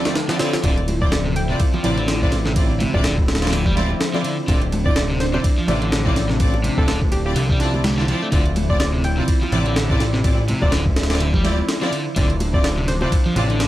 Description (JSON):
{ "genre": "breakbeat, breaks", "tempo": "125 BPM", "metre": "4/4", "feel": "swing 56% on 16ths", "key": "D minor", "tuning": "A4 = 439 Hz", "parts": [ { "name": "phased analog pad", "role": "sustained chords", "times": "0.0-13.7 s", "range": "D3 to A4", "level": "-27 LUFS", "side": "equal", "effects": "phaser, chorus, sidechain pumping" }, { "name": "rich studio string section", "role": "stabs", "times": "0.0-13.5 s", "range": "C4 to D5", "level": "-26 LUFS", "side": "right 1 dB", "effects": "tape echo" }, { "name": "breakbeat sampler-style drum kit", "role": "drums", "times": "0.1-13.7 s", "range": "kick drum, ride cymbal, snare drum", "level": "-20 LUFS", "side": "equal", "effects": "none" }, { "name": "bongos and congas", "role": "percussion", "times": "0.1-13.7 s", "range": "none", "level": "-29 LUFS", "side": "right 1 dB", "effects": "none" }, { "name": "crunchy overdriven guitar", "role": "riff", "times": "0.3-13.7 s", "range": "C3 to D4", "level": "-26 LUFS", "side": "equal", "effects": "tape echo" }, { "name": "fat analog bass", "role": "bass", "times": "0.6-13.7 s", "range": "D1 to C2", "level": "-21 LUFS", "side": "equal", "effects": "none" }, { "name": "hollow square pluck", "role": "melody", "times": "1.0-13.1 s", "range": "G4 to G5", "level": "-30 LUFS", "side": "left 1 dB", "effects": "chorus, telephone sound, cassette tape, tape echo" } ], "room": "digital ambience", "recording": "dry, gritty hardware recording", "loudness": "-16 LUFS", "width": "side -14 dB against mid", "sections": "0.0-13.7 A section", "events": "break 0.0-0.6", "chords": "0.0 Dm9" }